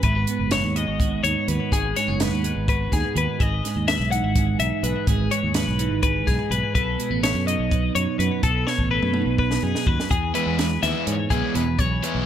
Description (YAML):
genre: math rock and midwest emo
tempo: 250 BPM (eighths)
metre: 7/8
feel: straight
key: E major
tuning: A4 = 439 Hz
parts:
  - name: twelve-string electric guitar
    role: accompaniment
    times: 0.0-12.3 s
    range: E2 to B4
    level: -26 LUFS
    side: right 7 dB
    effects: wide subtle chorus
  - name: twelve-string electric guitar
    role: arpeggios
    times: 0.0-12.3 s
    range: G#4 to F#5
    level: -25 LUFS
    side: left 7 dB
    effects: spring reverb, tape echo
  - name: fingered electric bass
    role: bass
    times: 0.0-12.2 s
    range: F#1 to G#2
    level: -25 LUFS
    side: equal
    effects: none
  - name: compact cocktail drum kit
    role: drums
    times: 0.0-12.1 s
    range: hi-hat, kick drum, snare drum, toms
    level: -25 LUFS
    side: equal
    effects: none
  - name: raw garage guitar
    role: riff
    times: 10.3-12.3 s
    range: E3 to E4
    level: -26 LUFS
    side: equal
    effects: overdrive
room: light reverb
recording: none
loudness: -20 LUFS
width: side -10 dB against mid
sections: 0.0-10.1 A section; 10.1-12.3 B section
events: drum fill 8.7-10.1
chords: 0.0 G#m7; 3.4 Emaj7/G#; 6.8 B7; 10.1 E